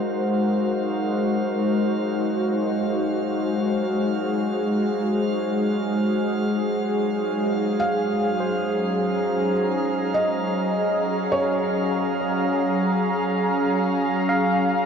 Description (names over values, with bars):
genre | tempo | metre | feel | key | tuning
ambient | free time | none | none | Gb lydian | A4 = 441 Hz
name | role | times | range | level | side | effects
warbly tape-like pad | sustained chords | 0.0-14.9 s | Gb3 to Bb5 | -21 LUFS | equal | chorus, built-in reverb
barky tine electric piano | arpeggios | 0.0-14.9 s | C5 to F5 | -32 LUFS | right 1 dB | medium stereo tremolo, ping-pong delay
hand-pumped harmonium | drone | 0.0-14.9 s | Gb3 | -36 LUFS | left 2 dB | none
drifting glass-harmonics texture | texture | 0.0-14.9 s | F5 to F6 | -36 LUFS | equal | chorus, built-in reverb
felt-muted upright piano | melody | 7.8-14.2 s | Db5 to F5 | -28 LUFS | equal | ping-pong delay
room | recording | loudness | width
wet huge ambient reverb, RT60 7.8 s | dark, warm production | -20 LUFS | side -7 dB against mid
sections
0.0-14.9 A section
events
fade-in on tine electric piano 0.0-14.9; fade-in on synth texture 0.0-14.9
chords
0.0 Ab7; 7.8 Gbmaj7